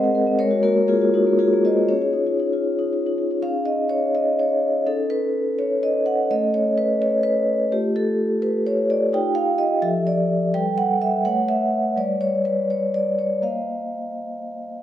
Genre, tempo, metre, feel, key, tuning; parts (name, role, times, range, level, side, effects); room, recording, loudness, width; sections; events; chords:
classical, contemporary piece for solo vibraphone; 77-86 BPM (dotted quarters); 6/8; rubato; A4 = 440 Hz
vibraphone with soft mallets; solo; 0.0-14.8 s; F3 to G5; -19 LUFS; equal
wet recital hall reverb, RT60 1.3 s; dark, warm production; -18 LUFS; side -11 dB against mid
0.0-3.4 A section; 3.4-14.8 B section
0.4 Absus2; 1.9 Dbadd9; 4.9 Cbadd9/Db; 6.3 Aadd9; 7.7 Aaug7; 9.1 Ebadd9; 9.8 Fadd9; 10.5 Gadd9; 11.3 Aadd9; 12.0 G; 13.4 Bbsus24